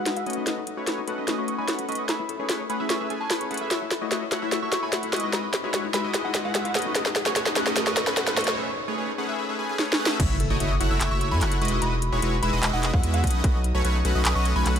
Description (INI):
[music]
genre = future bass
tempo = 148 BPM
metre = 4/4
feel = half-time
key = unclear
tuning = A4 = 440 Hz
[part]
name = soft synth bell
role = melody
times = 0.0-8.5, 11.1-14.7 s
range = F#5 to C#6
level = -33 LUFS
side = equal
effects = chorus, sidechain pumping, low-pass filter, dub echo
[part]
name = Celtic harp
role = arpeggios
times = 0.0-14.8 s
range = D#4 to E5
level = -35 LUFS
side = left 8 dB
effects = sidechain pumping, low-pass filter, tape echo
[part]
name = big bright polysynth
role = riff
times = 0.0-14.8 s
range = G#3 to G#5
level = -28 LUFS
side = equal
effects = chorus, sidechain pumping
[part]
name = trap drum kit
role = drums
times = 0.1-14.8 s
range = crash cymbal, handclaps, hi-hat, snare drum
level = -26 LUFS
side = equal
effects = none
[part]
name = riser and impact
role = sound effects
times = 4.7-11.8 s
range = none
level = -34 LUFS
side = right 1 dB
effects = none
[part]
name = airy dreamy lead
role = arpeggios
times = 10.2-14.8 s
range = C#6 to G#6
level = -36 LUFS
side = right 1 dB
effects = chorus, sidechain pumping, tape echo
[part]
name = saturated sub bass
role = bass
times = 10.2-14.8 s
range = E1 to F#2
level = -24 LUFS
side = equal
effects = sidechain pumping
[part]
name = electronic kick drum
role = drums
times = 10.2-10.3, 12.9-13.5 s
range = none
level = -23 LUFS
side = equal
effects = none
[sound]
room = light reverb, digital ambience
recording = none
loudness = -22 LUFS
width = side -8 dB against mid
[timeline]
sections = 0.0-10.2 A section; 10.2-14.8 B section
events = build-up 0.0-10.2; drum fill 0.0-8.6, 9.8-10.2; filter sweep on analog polysynth 0.0-10.2; filter sweep on synth bell 0.0-10.2; riser 4.7-8.6; break 8.6-10.2; drop 10.2-14.8; impact 10.2-11.8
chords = 0.3 B9; 2.1 Amaj9; 5.1 Emaj9; 6.8 B9; 8.6 Amaj9; 10.2 F#m7; 11.6 Emaj9; 13.2 B9